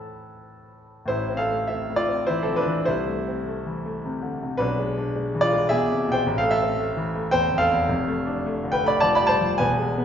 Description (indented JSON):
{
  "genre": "classical, romantic character piece for solo piano",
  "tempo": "90-112 BPM",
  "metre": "3/4",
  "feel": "rubato",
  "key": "A minor",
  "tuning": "A4 = 438 Hz",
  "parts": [
    { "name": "bright concert grand piano", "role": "solo", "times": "0.0-10.0 s", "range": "E1 to B5", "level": "-21 LUFS", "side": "equal", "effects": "none" }
  ],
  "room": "wet recital hall reverb, RT60 1.4 s",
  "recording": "heard from further back in the room, nothing above 7.5 kHz",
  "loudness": "-21 LUFS",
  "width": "side -8 dB against mid",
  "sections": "0.0-1.1 A section; 1.1-10.0 A section",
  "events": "none",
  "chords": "0.0 Am; 2.9 Am/C; 4.6 E7/B; 6.3 Am; 7.9 Dm/F",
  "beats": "0.44 | 1.09 1.70 2.29 | 2.88 3.47 4.03 | 4.60 5.15 5.71 | 6.26 6.80 7.34 | 7.90 8.46 9.03 | 9.61"
}